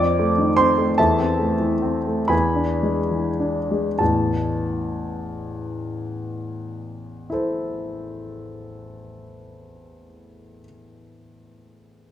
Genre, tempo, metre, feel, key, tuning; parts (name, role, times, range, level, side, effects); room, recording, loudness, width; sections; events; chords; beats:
classical, romantic character piece for solo piano; 33-52 BPM (dotted quarters); 6/8; rubato; A minor; A4 = 437 Hz
warm grand piano; solo; 0.0-12.1 s; A1 to D6; -20 LUFS; equal
moderate recital hall reverb, RT60 1.5 s; -20 LUFS; side -10 dB against mid
0.0-4.0 A section; 4.0-10.6 B section
slowing down 0.0-4.0
0.0 F7; 1.0 Am/E; 2.3 E7; 4.0 Am
| 0.97 2.31 | 3.99 5.68 | 7.30 8.91